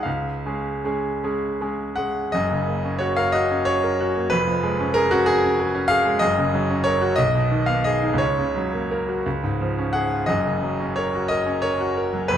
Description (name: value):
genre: classical, romantic character piece for solo piano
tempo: 49-66 BPM (dotted quarters)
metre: 6/8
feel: rubato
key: F# major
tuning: A4 = 441 Hz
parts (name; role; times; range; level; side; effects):
- bright grand piano; solo; 0.0-12.4 s; E#1 to F#5; -20 LUFS; equal; none
room: moderate recital hall reverb, RT60 1.6 s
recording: none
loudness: -19 LUFS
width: side -9 dB against mid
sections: 0.0-2.3 A section; 2.3-12.4 B section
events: none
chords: 0.1 C#; 2.3 F#; 4.3 C#7/E#; 6.2 F#; 7.2 G#m/B; 8.2 F#/C#; 9.2 C#; 10.3 F#